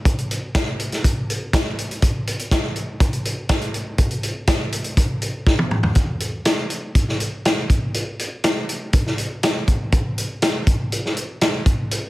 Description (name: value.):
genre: rock.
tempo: 121 BPM.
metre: 4/4.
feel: straight.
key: none.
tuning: none.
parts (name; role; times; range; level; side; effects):
vintage drum kit; drums; 0.1-12.0 s; hi-hat, kick drum, snare drum, toms; -18 LUFS; equal; none.
room: moderate studio reverb, RT60 0.8 s.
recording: dense, heavily limited modern master.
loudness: -19 LUFS.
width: side -18 dB against mid.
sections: 0.0-6.0 A section; 6.0-12.1 B section.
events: drum fill 5.5-6.0.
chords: none.